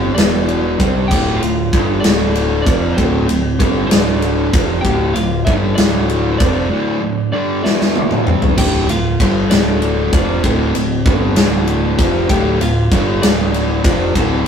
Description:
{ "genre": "quiet-loud alternative rock", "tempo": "64 BPM (dotted quarters)", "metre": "6/8", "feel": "straight", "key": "D dorian", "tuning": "A4 = 435 Hz", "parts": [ { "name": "lightly driven lead guitar", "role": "melody", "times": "0.0-14.5 s", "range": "C4 to G5", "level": "-22 LUFS", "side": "equal", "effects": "none" }, { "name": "fuzz guitar", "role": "riff", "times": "0.0-14.5 s", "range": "D2 to C4", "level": "-17 LUFS", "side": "equal", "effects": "distortion" }, { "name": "growling picked electric bass", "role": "bass", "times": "0.0-14.4 s", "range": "D1 to C2", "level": "-20 LUFS", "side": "equal", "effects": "overdrive" }, { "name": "huge arena drum kit", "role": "drums", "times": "0.2-14.3 s", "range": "crash cymbal, kick drum, ride cymbal, snare drum, toms", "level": "-16 LUFS", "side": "equal", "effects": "none" } ], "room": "light reverb", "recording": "rough rehearsal-room recording", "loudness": "-12 LUFS", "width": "side -7 dB against mid", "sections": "0.0-8.6 A section; 8.6-14.5 A section", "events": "drum fill 7.6-8.6", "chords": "0.2 E5; 0.8 Dm; 7.6 E5; 8.3 Csus2; 8.6 Dm", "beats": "0.16 | 1.10 2.04 | 2.97 3.91 | 4.84 5.78 | 6.71 7.64 | 8.57 9.51 | 10.44 11.37 | 12.30 13.22 | 14.15" }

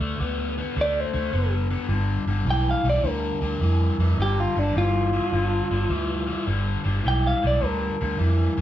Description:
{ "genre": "electric blues shuffle", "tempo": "105 BPM", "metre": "4/4", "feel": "swing 66% on 8ths", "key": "unclear", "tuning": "A4 = 440 Hz", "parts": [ { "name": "biting overdriven guitar", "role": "riff", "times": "0.0-8.6 s", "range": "G2 to B3", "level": "-27 LUFS", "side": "left 2 dB", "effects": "phaser" }, { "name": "vintage muted fingered electric bass", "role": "bass", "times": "0.0-8.6 s", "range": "F#1 to F2", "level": "-24 LUFS", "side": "equal", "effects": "none" }, { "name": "electric guitar through a small old amp", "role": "melody", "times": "0.8-8.6 s", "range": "D4 to G5", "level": "-26 LUFS", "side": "equal", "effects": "none" } ], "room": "moderate large studio reverb, RT60 0.9 s", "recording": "band playing live in one room", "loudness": "-21 LUFS", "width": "side -12 dB against mid", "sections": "0.0-1.9 A section; 1.9-8.6 B section", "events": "clean electric guitar solo 1.9-8.6", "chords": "0.0 D7; 1.9 G7", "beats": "0.19 0.76 1.33 | 1.91 2.48 3.05 3.62 | 4.19 4.76 5.33 5.90 | 6.47 7.04 7.62 8.19" }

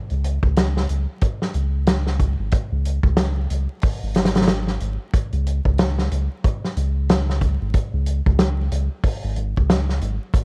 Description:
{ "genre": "trip hop", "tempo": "92 BPM", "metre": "4/4", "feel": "swing 60% on 16ths", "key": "unclear", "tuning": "A4 = 439 Hz", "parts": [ { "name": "round analog bass", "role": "bass", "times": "0.1-10.2 s", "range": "G#1 to C#2", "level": "-24 LUFS", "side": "equal", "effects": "tube saturation" }, { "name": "natural country drum kit", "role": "drums", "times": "0.1-10.4 s", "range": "hi-hat, kick drum, snare drum", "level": "-22 LUFS", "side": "equal", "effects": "none" } ], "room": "little or no reverb", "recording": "worn, warbling old tape, cassette tape, vinyl crackle, warbly pitch drift", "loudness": "-21 LUFS", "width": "mono", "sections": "0.0-10.4 A section", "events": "none", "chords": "none", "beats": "0.56 1.22 1.87 | 2.52 3.17 3.83 4.48 | 5.13 5.78 6.43 7.09 | 7.74 8.39 9.04 9.69 | 10.35" }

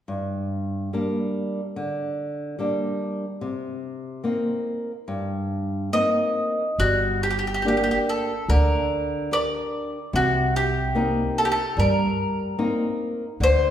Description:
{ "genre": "fado-style ballad", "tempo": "73 BPM", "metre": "4/4", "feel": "rubato", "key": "G harmonic minor", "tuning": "A4 = 440 Hz", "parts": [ { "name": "flamenco guitar", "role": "accompaniment", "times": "0.1-13.7 s", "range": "G2 to Bb4", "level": "-26 LUFS", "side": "equal", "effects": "none" }, { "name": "bowl-back mandolin", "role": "melody", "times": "5.9-13.7 s", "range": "F#4 to Eb5", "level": "-23 LUFS", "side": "left 1 dB", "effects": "none" }, { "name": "upright bass", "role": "bass", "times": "6.8-13.7 s", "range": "G1 to G2", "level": "-24 LUFS", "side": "right 1 dB", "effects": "none" } ], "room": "wet recital hall reverb, RT60 1.5 s", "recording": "recorded in a church or concert hall", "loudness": "-22 LUFS", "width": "side -10 dB against mid", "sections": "0.1-6.8 A section; 6.8-13.7 B section", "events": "none", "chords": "0.1 Gm; 3.4 Cm7; 6.8 Gm; 10.1 Cm7", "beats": "| 0.09 0.93 1.76 2.58 | 3.40 4.23 5.07 5.92 | 6.79 7.65 8.49 9.31 | 10.14 10.96 11.78 12.59 | 13.41" }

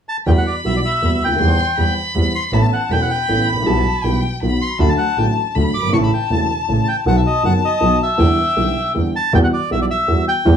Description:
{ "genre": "tango", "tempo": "159 BPM", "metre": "3/4", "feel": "rubato", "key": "E minor", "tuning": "A4 = 441 Hz", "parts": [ { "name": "bandoneon", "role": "melody", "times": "0.1-10.6 s", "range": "D5 to D6", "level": "-20 LUFS", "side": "equal", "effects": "none" }, { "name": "rich violin", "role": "second line", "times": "0.3-9.1 s", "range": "G5 to C6", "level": "-23 LUFS", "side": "left 6 dB", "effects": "none" }, { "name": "warm upright piano", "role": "accompaniment", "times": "0.3-10.6 s", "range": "E1 to A4", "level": "-19 LUFS", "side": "right 1 dB", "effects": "none" }, { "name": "clear double bass", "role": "bass", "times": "0.3-10.6 s", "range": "E1 to E2", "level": "-19 LUFS", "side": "right 1 dB", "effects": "none" } ], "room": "moderate club ambience, RT60 0.5 s", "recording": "small room ambience", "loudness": "-14 LUFS", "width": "side -8 dB against mid", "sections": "0.3-9.3 A section; 9.3-10.6 A section", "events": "none", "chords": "0.3 Emadd9; 1.4 C/E; 2.5 Aadd9; 3.7 Em/B; 4.4 B; 4.8 D; 5.9 A; 7.1 B; 8.2 Em7; 9.3 Emadd9", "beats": "| 0.27 0.65 1.03 | 1.40 1.78 2.15 | 2.53 2.90 3.28 | 3.66 4.04 4.42 | 4.80 5.18 5.55 | 5.93 6.31 6.68 | 7.06 7.43 7.81 | 8.19 8.56 8.95 | 9.33 9.71 10.09 | 10.46" }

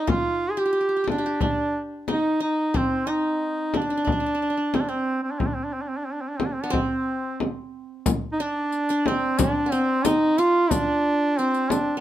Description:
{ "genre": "Arabic maqam ensemble", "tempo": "90 BPM", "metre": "4/4", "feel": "straight", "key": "C minor", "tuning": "A4 = 440 Hz", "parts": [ { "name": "clear duduk", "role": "melody", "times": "0.0-12.0 s", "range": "C4 to Ab4", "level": "-23 LUFS", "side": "right 1 dB", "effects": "plate reverb" }, { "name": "qanun", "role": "second line", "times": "0.0-12.0 s", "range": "B3 to G4", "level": "-30 LUFS", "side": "equal", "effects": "none" }, { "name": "frame drum", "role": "percussion", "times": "0.1-11.9 s", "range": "none", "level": "-25 LUFS", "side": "left 2 dB", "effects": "none" }, { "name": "riq", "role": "percussion", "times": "8.1-11.9 s", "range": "none", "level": "-32 LUFS", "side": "left 7 dB", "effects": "none" } ], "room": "moderate small room reverb, RT60 0.5 s", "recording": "none", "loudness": "-21 LUFS", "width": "side -12 dB against mid", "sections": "0.0-8.1 A section; 8.1-12.0 B section", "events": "none", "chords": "none", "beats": "| 0.08 0.75 1.41 2.08 | 2.74 3.40 4.07 4.73 | 5.40 6.06 6.73 7.39 | 8.06 8.72 9.38 10.05 | 10.71 11.37" }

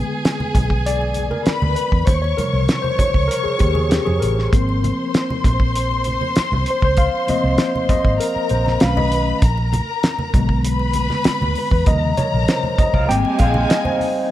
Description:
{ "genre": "lush 1970s-style soul", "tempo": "98 BPM", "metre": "4/4", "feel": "straight", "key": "Ab major", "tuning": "A4 = 440 Hz", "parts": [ { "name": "warm studio string section", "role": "second line", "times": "0.0-14.3 s", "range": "Ab3 to Db6", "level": "-24 LUFS", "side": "left 1 dB", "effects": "none" }, { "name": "mellow tine electric piano", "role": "accompaniment", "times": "0.0-14.3 s", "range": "C3 to G5", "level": "-21 LUFS", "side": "left 2 dB", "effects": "medium stereo tremolo" }, { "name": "cloth-damped thuddy drum kit", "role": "drums", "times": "0.2-14.2 s", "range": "hi-hat, kick drum, snare drum", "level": "-19 LUFS", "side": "equal", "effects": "none" }, { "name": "congas", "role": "percussion", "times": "0.4-14.1 s", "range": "none", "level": "-28 LUFS", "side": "right 2 dB", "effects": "none" }, { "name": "vintage muted fingered electric bass", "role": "bass", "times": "0.6-13.6 s", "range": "Ab1 to F2", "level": "-20 LUFS", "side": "equal", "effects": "none" }, { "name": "electric guitar through a small old amp", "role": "riff", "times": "12.9-14.3 s", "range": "Bb3 to Bb4", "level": "-26 LUFS", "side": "right 5 dB", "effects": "tremolo" } ], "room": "light reverb", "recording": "none", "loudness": "-16 LUFS", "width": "side -13 dB against mid", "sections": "0.0-14.3 A section", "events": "tine electric piano solo 0.0-14.3", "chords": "0.0 Bb7b9; 2.1 Eb13; 4.5 Ab69; 8.8 B9; 9.4 Bb7b9; 11.9 Eb13; 13.1 Abmaj9", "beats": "0.25 0.86 1.47 | 2.08 2.69 3.31 3.92 | 4.53 5.14 5.75 6.36 | 6.97 7.59 8.20 8.81 | 9.42 10.03 10.64 11.26 | 11.87 12.48 13.09 13.70" }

